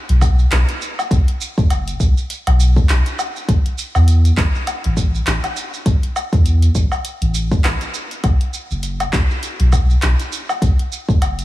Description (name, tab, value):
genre	organic downtempo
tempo	101 BPM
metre	4/4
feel	swing 57% on 16ths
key	unclear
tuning	A4 = 439 Hz
part	warm sub bass	bass	0.1-11.4 s	F#1 to E2	-14 LUFS	equal	sidechain pumping
part	deep house drum kit	drums	0.1-11.4 s	handclaps, hi-hat, shaker, woodblock	-23 LUFS	equal	none
part	electronic kick drum	drums	0.2-11.2 s	none	-16 LUFS	equal	none
room	little or no reverb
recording	heavily compressed radio sound, multiband compression, small room ambience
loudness	-14 LUFS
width	side -16 dB against mid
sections	0.0-11.4 A section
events	none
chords	none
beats	0.52 | 1.11 1.70 2.30 2.89 | 3.49 4.08 4.67 5.27 | 5.86 6.46 7.05 7.64 | 8.24 8.83 9.43 10.02 | 10.62 11.21